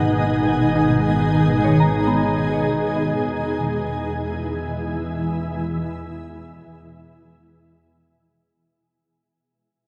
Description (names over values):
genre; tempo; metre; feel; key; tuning
ambient; free time; none; none; unclear; A4 = 440 Hz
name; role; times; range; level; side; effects
shimmering ambient pad; sustained chords; 0.0-8.7 s; B2 to Ab4; -22 LUFS; equal; chorus, built-in reverb, shimmer reverb
soft synth bell; arpeggios; 0.0-8.7 s; Cb4 to Bb5; -29 LUFS; equal; chorus, delay, shimmer reverb
warm chamber double bass section; bass; 0.0-8.6 s; Ab1 to E2; -32 LUFS; equal; tube saturation
room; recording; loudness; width
wet huge ambient reverb, RT60 8.6 s; dreamy mix soaked in reverb; -21 LUFS; mono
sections
0.0-8.6 A section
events
fade-out 1.5-8.6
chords
0.0 Abm; 3.3 E